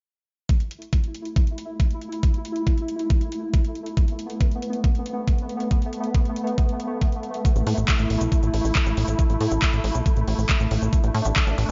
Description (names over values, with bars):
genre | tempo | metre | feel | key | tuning
psychedelic trance | 138 BPM | 4/4 | straight | unclear | A4 = 438 Hz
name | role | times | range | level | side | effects
pulsing gated texture | sustained chords | 0.8-11.7 s | A3 to E4 | -30 LUFS | equal | chorus, built-in reverb, sidechain pumping
electronic kick drum | drums | 0.5-11.4 s | none | -23 LUFS | equal | overdrive, small room reverb
garage drum kit | drums | 0.5-11.7 s | handclaps, hi-hat | -32 LUFS | equal | overdrive, small room reverb
cabasa | percussion | 7.5-11.7 s | none | -43 LUFS | equal | none
plucky analog bass | bass | 7.6-11.7 s | A1 to A2 | -25 LUFS | equal | none
room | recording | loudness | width
little or no reverb | nothing above 7.5 kHz | -23 LUFS | mono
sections
0.5-11.7 A section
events
filter sweep on synth texture 0.5-11.7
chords
0.5 A5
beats
| 0.49 0.93 1.36 1.80 | 2.23 2.67 3.10 3.54 | 3.97 4.41 4.84 5.28 | 5.71 6.14 6.58 7.01 | 7.45 7.88 8.32 8.75 | 9.19 9.62 10.06 10.49 | 10.93 11.36